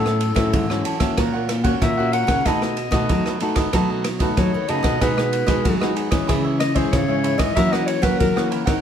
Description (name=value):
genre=samba and choro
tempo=94 BPM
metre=4/4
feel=straight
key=unclear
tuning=A4 = 440 Hz
part: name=warm clarinet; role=second line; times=0.0-8.4 s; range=A4 to F#5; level=-24 LUFS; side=left 3 dB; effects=none
part: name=cavaquinho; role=accompaniment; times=0.0-8.8 s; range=D#4 to F#5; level=-27 LUFS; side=right 5 dB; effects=none
part: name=nylon-string guitar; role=accompaniment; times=0.0-8.8 s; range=F#2 to F#4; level=-25 LUFS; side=left 3 dB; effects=none
part: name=nylon-string guitar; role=bass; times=0.0-8.5 s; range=G#2 to F#3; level=-24 LUFS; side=right 1 dB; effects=none
part: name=open jazz drum kit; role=drums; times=0.1-8.8 s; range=kick drum, ride cymbal, rim click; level=-22 LUFS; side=right 1 dB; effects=none
room=moderate studio reverb, RT60 0.7 s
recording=heard from further back in the room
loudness=-17 LUFS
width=side -8 dB against mid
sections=0.0-8.8 A section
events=clarinet solo 0.0-8.8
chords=0.0 A6; 1.2 F#/A#; 2.5 B7; 5.0 B6; 6.3 C#m; 7.6 F#7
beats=0.53 1.18 1.81 | 2.46 3.10 3.73 4.37 | 5.01 5.65 6.29 6.93 | 7.57 8.21